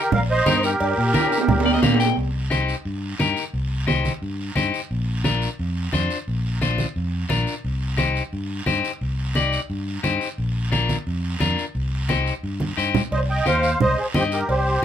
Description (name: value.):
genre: latin, cumbia.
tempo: 175 BPM.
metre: 4/4.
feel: straight.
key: C minor.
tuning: A4 = 441 Hz.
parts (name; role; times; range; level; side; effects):
musette accordion; melody; 0.0-1.8, 13.1-14.8 s; G4 to G5; -21 LUFS; right 1 dB; none.
fingered electric bass; bass; 0.1-14.8 s; Bb1 to Bb2; -24 LUFS; equal; none.
congas; percussion; 0.1-14.8 s; none; -24 LUFS; right 2 dB; none.
cowbell and timbales; percussion; 0.1-2.1, 13.1-14.7 s; none; -24 LUFS; right 5 dB; none.
guiro; percussion; 0.1-14.8 s; none; -35 LUFS; right 4 dB; none.
electric guitar at the edge of break-up; accompaniment; 0.5-14.4 s; D4 to G5; -23 LUFS; left 6 dB; none.
room: moderate small room reverb, RT60 0.5 s.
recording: minimal, uncompressed stereo recording.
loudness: -20 LUFS.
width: side -9 dB against mid.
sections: 0.0-2.2 A section; 2.2-13.1 B section; 13.1-14.8 C section.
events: drum fill 1.1-2.2, 12.6-13.1; clean electric guitar fill 1.5-2.2.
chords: 0.0 Eb; 0.8 Gm; 2.2 Cm; 4.9 Bb; 7.6 Cm; 10.4 Bb; 11.8 Cm.